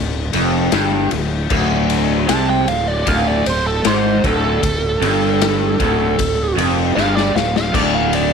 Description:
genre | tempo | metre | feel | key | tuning
blues rock power trio and southern rock | 77 BPM | 4/4 | straight | D minor | A4 = 441 Hz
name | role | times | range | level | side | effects
raw garage guitar | riff | 0.0-8.3 s | D2 to C3 | -18 LUFS | equal | overdrive
fuzz fingered electric bass | bass | 0.0-8.3 s | D1 to C2 | -21 LUFS | right 1 dB | overdrive
raw garage drum kit | drums | 0.3-8.3 s | crash cymbal, kick drum, ride cymbal, snare drum | -21 LUFS | left 6 dB | none
fuzz lead guitar | melody | 2.3-8.3 s | A4 to A5 | -20 LUFS | right 5 dB | wah, distortion, slapback echo
room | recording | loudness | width
small room ambience | 1960s-style stereo | -14 LUFS | side -6 dB against mid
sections
0.0-8.3 A section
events
lead electric guitar solo 0.0-8.3; drum fill 7.0-7.7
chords
0.0 Dm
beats
0.73 | 1.51 2.29 3.07 3.85 | 4.63 5.41 6.19 6.97 | 7.74

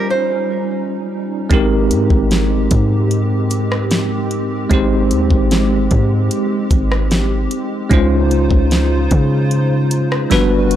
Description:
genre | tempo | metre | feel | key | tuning
contemporary R&B | 75 BPM | 4/4 | straight | Ab major | A4 = 440 Hz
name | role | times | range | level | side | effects
bell-like tine electric piano | accompaniment | 0.0-10.8 s | G3 to C5 | -18 LUFS | equal | fast stereo tremolo
hollow soft pad | sustained chords | 0.0-10.8 s | Db3 to C5 | -24 LUFS | right 1 dB | ensemble chorus, sidechain pumping
nylon-string guitar | arpeggios | 0.0-1.3 s | C5 | -21 LUFS | right 3 dB | analog delay
warm 808-style bass | bass | 1.5-10.8 s | G1 to Db3 | -17 LUFS | equal | none
smooth R&B drum kit | drums | 1.5-10.8 s | hi-hat, kick drum, rim click, snare drum | -18 LUFS | equal | none
room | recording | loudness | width
little or no reverb | dry, gritty hardware recording, lossy compression artefacts | -13 LUFS | side -11 dB against mid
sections
0.0-1.5 A section; 1.5-10.8 B section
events
break 0.0-1.5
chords
0.0 Eb13; 1.5 Abmaj9; 7.9 Dbmaj9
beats
0.71 | 1.51 2.31 3.11 3.91 | 4.71 5.51 6.31 7.11 | 7.91 8.71 9.51 10.31

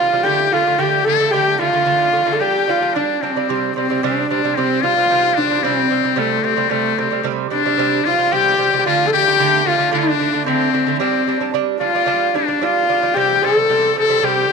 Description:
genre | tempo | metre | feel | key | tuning
mongolian traditional, Mongolian folk | 112 BPM | 4/4 | straight | C zhi mode | A4 = 440 Hz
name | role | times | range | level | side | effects
warm horsehead fiddle | melody | 0.0-14.5 s | A3 to A4 | -18 LUFS | equal | none
trumpet with metal mute | second line | 0.0-14.5 s | A3 to A4 | -19 LUFS | left 14 dB | none
lute | arpeggios | 0.0-14.5 s | C3 to D4 | -21 LUFS | right 12 dB | none
room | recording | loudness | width
moderate plate reverb, RT60 2.7 s | 1960s-style stereo with parts hard left and right | -14 LUFS | side -5 dB against mid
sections
0.0-4.6 A section; 4.6-14.5 A section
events
none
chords
0.3 D5; 2.4 G5; 3.5 C5; 8.9 D5; 11.0 G5; 13.2 C5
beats
| 0.25 0.79 1.33 1.87 | 2.41 2.95 3.48 4.02 | 4.56 5.10 5.64 6.17 | 6.71 7.25 7.79 8.32 | 8.86 9.40 9.94 10.47 | 11.01 11.55 12.09 12.62 | 13.16 13.70 14.23

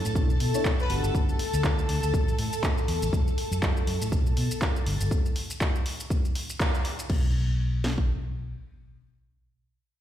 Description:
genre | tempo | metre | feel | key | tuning
filtered disco house | 121 BPM | 4/4 | swing 57% on 16ths | B minor | A4 = 440 Hz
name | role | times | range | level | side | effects
string machine, full ensemble | sustained chords | 0.0-5.1 s | A4 to A5 | -32 LUFS | left 1 dB | ensemble chorus, vintage 12-bit sampler grit, sidechain pumping
vintage muted fingered electric bass | bass | 0.0-8.5 s | G1 to B2 | -27 LUFS | equal | sidechain pumping
punchy analog drum machine | drums | 0.1-7.2 s | crash cymbal, handclaps, hi-hat, shaker | -33 LUFS | equal | sidechain pumping on perc, sidechain pumping on hats, sidechain pumping on cymbals
mellow reed electric piano | accompaniment | 0.2-1.4 s | B3 to F#5 | -34 LUFS | equal | fast tremolo, phaser, vintage 12-bit sampler grit, sidechain pumping
house drum kit | drums | 0.2-8.1 s | kick drum, snare drum | -26 LUFS | equal | none
bright trumpet section | melody | 0.8-1.0 s | B4 | -37 LUFS | left 2 dB | sidechain pumping, ping-pong delay
room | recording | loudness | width
light reverb | played on a big sound system in a bare room, large studio reverb | -24 LUFS | side -11 dB against mid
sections
0.0-7.1 A section; 7.1-10.0 B section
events
drop 0.0-7.1; band accent 6.6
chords
0.0 Bm11; 0.9 Gmaj7; 2.1 A5; 3.1 B5; 4.9 N.C.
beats
0.15 0.65 | 1.15 1.64 2.14 2.63 | 3.13 3.63 4.12 4.62 | 5.11 5.61 6.11 6.60 | 7.10 7.59 8.09

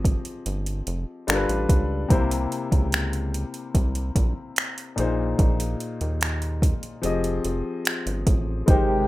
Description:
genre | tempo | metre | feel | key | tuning
contemporary R&B | 73 BPM | 4/4 | straight | F minor | A4 = 441 Hz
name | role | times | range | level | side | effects
warm concert grand piano | accompaniment | 0.0-9.1 s | Bb2 to Eb5 | -28 LUFS | left 3 dB | none
rubbery square bass | bass | 0.0-9.1 s | F1 to Eb2 | -26 LUFS | equal | none
smooth R&B drum kit | drums | 0.0-8.9 s | finger snaps, hi-hat, kick drum | -22 LUFS | equal | none
soft octave-layered synth lead | melody | 8.7-9.1 s | G5 | -24 LUFS | equal | chorus, tremolo
chorused pulse-width pad | sustained chords | 8.7-9.1 s | C3 to G4 | -27 LUFS | right 2 dB | sidechain pumping
room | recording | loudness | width
little or no reverb | rough home demo mix | -22 LUFS | side -17 dB against mid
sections
0.0-8.7 A section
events
none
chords
0.0 Fm7; 1.3 G7; 2.1 C7; 5.0 Bb7sus4; 7.0 Fm9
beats
0.46 1.28 | 2.10 2.92 3.75 4.57 | 5.39 6.21 7.04 7.86 | 8.68

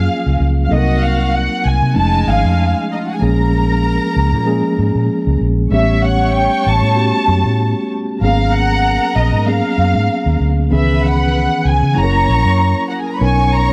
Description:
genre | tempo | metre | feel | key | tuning
soul | 96 BPM | 4/4 | swing 54% on 16ths | F# major | A4 = 440 Hz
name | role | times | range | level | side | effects
dark studio violin section | melody | 0.0-13.7 s | Eb5 to A#5 | -20 LUFS | equal | tape echo
muted studio string section | second line | 0.0-13.7 s | G#3 to C#6 | -26 LUFS | equal | none
mellow tine electric piano | accompaniment | 0.0-13.7 s | D#3 to Bb4 | -21 LUFS | equal | none
vintage muted fingered electric bass | bass | 0.0-13.7 s | F1 to C#3 | -17 LUFS | equal | none
room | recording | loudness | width
small room ambience | dry, close 1970s-style studio recording | -15 LUFS | mono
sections
0.0-13.7 A section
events
none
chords
0.0 F#maj9; 0.7 Cm7b5; 2.0 F7alt; 3.2 A#m7; 5.7 A13; 8.2 G#m11; 10.7 C#m9; 12.0 F#7; 13.2 Bmaj9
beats
0.09 | 0.71 1.34 1.97 2.59 | 3.22 3.84 4.47 5.09 | 5.72 6.34 6.97 7.59 | 8.22 8.84 9.47 10.09 | 10.72 11.34 11.97 12.59 | 13.21

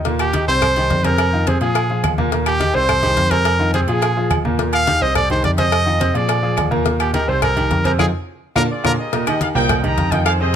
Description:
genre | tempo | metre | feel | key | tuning
latin, salsa | 212 BPM | 4/4 | straight | Eb major | A4 = 442 Hz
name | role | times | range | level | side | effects
clear concert grand piano | accompaniment | 0.0-10.6 s | Bb2 to C5 | -21 LUFS | equal | none
bell-like tine electric piano | bass | 0.0-10.6 s | C2 to Bb2 | -20 LUFS | equal | phaser
congas | percussion | 0.1-10.5 s | none | -26 LUFS | left 2 dB | none
cowbell | percussion | 0.1-10.4 s | none | -26 LUFS | left 10 dB | none
clear trumpet | melody | 0.2-8.9 s | G4 to F5 | -19 LUFS | equal | none
agogo bells and timbales | percussion | 0.2-10.4 s | none | -26 LUFS | right 11 dB | none
claves | percussion | 0.2-10.4 s | none | -28 LUFS | left 8 dB | none
clear trumpet section | melody | 8.7-10.6 s | F4 to Bb5 | -22 LUFS | right 1 dB | none
room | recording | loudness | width
light reverb | close, detailed microphones | -15 LUFS | side -9 dB against mid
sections
0.1-9.1 A section; 9.1-10.6 B section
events
drum fill 8.0-9.1; band accent 8.0-9.1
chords
0.1 Eb; 0.6 Cm; 1.2 Fm7; 1.8 Bb5; 2.3 Eb; 2.9 Cm; 3.5 Fm7; 4.0 Bb5; 4.6 Eb; 5.2 Cm; 5.7 Fm7; 6.3 Bb7; 6.9 Eb; 7.4 Cm7; 8.0 F7(no3); 8.6 Bb7; 9.1 Eb; 9.7 Cm7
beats
| 0.05 0.34 0.62 0.90 | 1.19 1.47 1.75 2.04 | 2.32 2.61 2.89 3.17 | 3.46 3.74 4.02 4.31 | 4.59 4.87 5.16 5.44 | 5.72 6.01 6.29 6.58 | 6.86 7.14 7.43 7.71 | 7.99 8.28 8.56 8.84 | 9.13 9.41 9.70 9.98 | 10.26 10.54

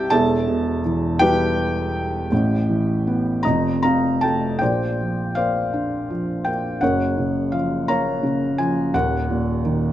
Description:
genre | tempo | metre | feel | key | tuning
classical, lyrical solo piano | 51-57 BPM (dotted quarters) | 6/8 | rubato | unclear | A4 = 440 Hz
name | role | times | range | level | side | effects
felt-muted upright piano | solo | 0.0-9.9 s | Eb1 to Bb5 | -18 LUFS | equal | none
room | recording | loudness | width
light reverb | close, detailed microphones | -18 LUFS | side -12 dB against mid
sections
0.0-4.6 A section; 4.6-9.9 B section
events
felt piano fill 3.4-4.6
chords
0.1 Em; 2.3 Asus2; 3.4 F7; 4.6 Bbadd9; 6.8 Gbmaj7; 8.9 Ebm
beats
| 0.12 1.21 | 2.31 3.45 | 4.61 5.73 | 6.82 7.88 | 8.94

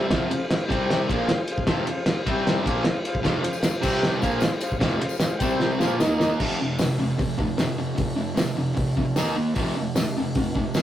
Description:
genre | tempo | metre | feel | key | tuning
garage rock duo or trio | 152 BPM | 4/4 | straight | F minor | A4 = 440 Hz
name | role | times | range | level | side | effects
combo organ | sustained chords | 0.0-6.3 s | Eb4 to G5 | -29 LUFS | left 2 dB | none
fuzz guitar | riff | 0.0-10.8 s | F2 to Eb4 | -24 LUFS | equal | distortion
cloth-damped thuddy drum kit | drums | 0.1-10.8 s | crash cymbal, hi-hat, kick drum, ride cymbal, snare drum | -25 LUFS | equal | none
tambourine | percussion | 3.2-10.8 s | none | -40 LUFS | left 5 dB | none
room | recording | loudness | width
wet studio ambience, RT60 0.5 s | rough rehearsal-room recording, tube saturation | -21 LUFS | side -12 dB against mid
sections
0.1-6.4 A section; 6.4-10.8 B section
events
drum fill 5.6-6.4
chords
0.1 Fm; 0.7 C5; 1.1 Fm; 2.3 C5; 2.7 Fm; 3.8 C5; 4.2 Fm; 5.4 C5; 5.8 Fm; 6.0 Eb5; 6.4 F5; 9.2 Eb5; 9.6 F5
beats
| 0.11 0.50 0.89 1.28 | 1.68 2.07 2.46 2.85 | 3.25 3.64 4.03 4.42 | 4.82 5.21 5.60 6.00 | 6.39 6.79 7.18 7.58 | 7.98 8.38 8.77 9.17 | 9.57 9.96 10.36 10.76

